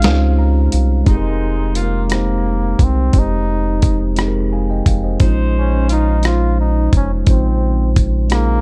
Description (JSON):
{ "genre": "slow six-eight R&B", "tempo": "58 BPM (dotted quarters)", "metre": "6/8", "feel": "straight", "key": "F minor", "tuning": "A4 = 440 Hz", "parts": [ { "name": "breathy flugelhorn", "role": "melody", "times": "0.0-8.6 s", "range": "Ab3 to F5", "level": "-26 LUFS", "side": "equal", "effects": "none" }, { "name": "mellow tine electric piano", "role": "accompaniment", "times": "0.0-8.6 s", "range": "Db3 to Bb5", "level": "-23 LUFS", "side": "equal", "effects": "none" }, { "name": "mellow horn section", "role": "stabs", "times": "0.0-2.0, 5.2-6.2 s", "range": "F3 to C5", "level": "-31 LUFS", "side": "equal", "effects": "delay" }, { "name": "rubbery square bass", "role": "bass", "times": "0.0-8.6 s", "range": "F1 to Db2", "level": "-18 LUFS", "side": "equal", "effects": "none" }, { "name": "dusty soul sampler-style drum kit", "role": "drums", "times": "0.0-8.5 s", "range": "hi-hat, kick drum, rim click, snare drum", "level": "-17 LUFS", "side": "equal", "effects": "none" } ], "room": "digital ambience", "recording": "dark, warm production", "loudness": "-16 LUFS", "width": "mono", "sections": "0.0-1.1 A section; 1.1-8.6 B section", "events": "break 0.0-1.1; tine electric piano fill 0.0-1.1", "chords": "0.0 Bbm11; 1.1 Fm11; 5.2 Bbm11" }